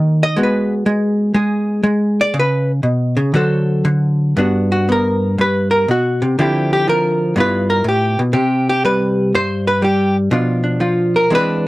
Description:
solo jazz; 121 BPM; 4/4; swing 67% on 8ths, rubato; G major from 4.4 s; A4 = 440 Hz
hollow-body jazz guitar; solo; 0.0-11.7 s; G2 to D#5; -14 LUFS; equal
light reverb; -14 LUFS; side -18 dB against mid
0.0-4.4 A section; 4.4-11.7 A section
hollow-body jazz guitar solo 0.0-4.4, 4.4-11.7
0.4 G#m7; 2.4 Bsus2; 3.4 D7; 4.4 Gmaj7; 6.4 Dm11; 7.4 G13; 8.3 C5; 10.3 Bdim

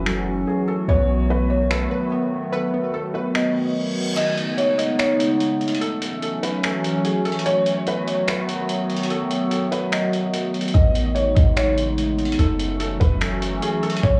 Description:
hip hop, atmospheric cloud-rap; 146 BPM; 4/4; half-time; F# dorian; A4 = 441 Hz
felt-muted upright piano; melody; 0.0-14.2 s; G#4 to D#5; -28 LUFS; equal; tape echo
warbly tape-like pad; sustained chords; 0.0-14.2 s; C#3 to F#4; -26 LUFS; equal; chorus, built-in reverb, sidechain pumping
glassy digital keys; arpeggios; 0.0-4.2 s; F#3 to B4; -29 LUFS; equal; chorus, tape echo
clean 808-style bass; bass; 0.0-1.9, 10.7-14.2 s; F#1 to B1; -24 LUFS; equal
trip hop sampler-style drum kit; drums; 0.1-14.1 s; crash cymbal, finger snaps, hi-hat, kick drum; -28 LUFS; equal
reverse cymbal; sound effects; 3.6-4.2 s; -34 LUFS; equal
light reverb; dry, gritty hardware recording, small room ambience; -21 LUFS; mono
0.0-4.2 A section; 4.2-14.2 B section
kick muted 3.3-4.2, 4.2-10.7; reverse cymbal 3.6-4.2
0.0 F#m7; 0.9 B7; 4.2 Amaj9#11; 5.8 F#m7; 7.5 B7; 10.7 Amaj9#11; 12.4 F#m7

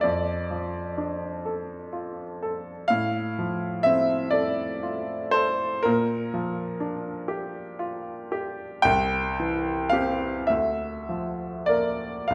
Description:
classical, romantic nocturne for solo piano; 32-43 BPM (dotted quarters); 6/8; rubato; F major; A4 = 440 Hz
clear grand piano; solo; 0.0-12.3 s; C2 to G5; -27 LUFS; equal
wet recital hall reverb, RT60 1.4 s; -27 LUFS; mono
0.0-12.3 A section
0.0 Dm/F; 2.9 F/A; 5.9 Gm7/Bb; 8.9 C; 10.5 Bb/D

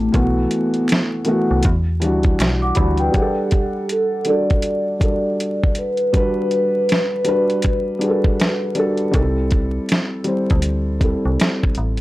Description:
lo-fi hip hop; 80 BPM; 4/4; swing 61% on 16ths; A4 = 441 Hz
vibraphone with soft mallets; melody; 0.0-8.7 s; A3 to D5; -21 LUFS; equal; low-pass filter, analog delay
felt-muted upright piano; accompaniment; 0.0-12.0 s; C3 to F#5; -20 LUFS; equal; cassette tape, low-pass filter
metallic FM bass; bass; 0.0-3.1, 9.1-12.0 s; A1 to E2; -20 LUFS; equal; transformer saturation
dusty soul sampler-style drum kit; drums; 0.1-12.0 s; hi-hat, kick drum, snare drum; -19 LUFS; equal
finger snap; percussion; 0.9-2.6 s; -34 LUFS; right 1 dB
large celesta; second line; 2.6-3.4 s; B4 to D6; -24 LUFS; equal; low-pass filter, analog delay
moderate small room reverb, RT60 0.5 s; dry, gritty hardware recording, vinyl crackle; -16 LUFS; side -17 dB against mid
0.0-3.1 A section; 3.1-12.0 B section
0.1 B7sus4; 1.6 Em9; 3.1 Gmaj9; 9.1 C6

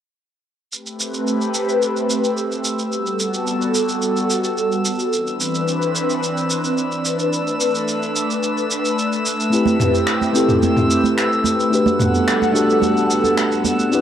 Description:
sunset chillout; 109 BPM; 4/4; straight; A dorian; A4 = 440 Hz
airy breathy pad; sustained chords; 0.7-14.0 s; E3 to F#5; -20 LUFS; equal; chorus, phaser, cassette tape
deep house drum kit; drums; 0.7-14.0 s; finger snaps, shaker, toms; -24 LUFS; equal; cassette tape
drifting glass-harmonics texture; texture; 1.3-14.0 s; E6; -26 LUFS; equal; chorus, built-in reverb, cassette tape
mellow tine electric piano; accompaniment; 9.5-14.0 s; A3 to B4; -18 LUFS; left 1 dB; auto-pan, cassette tape, analog delay
congas; percussion; 9.7-13.8 s; -24 LUFS; right 8 dB
wet spring reverb, RT60 1.8 s; home recording on cassette; -16 LUFS; side -9 dB against mid
0.7-14.0 A section
0.7 Am9; 2.9 Gmaj9; 5.1 Cmaj9; 7.3 Bm7; 9.5 Am9; 11.7 Gmaj9

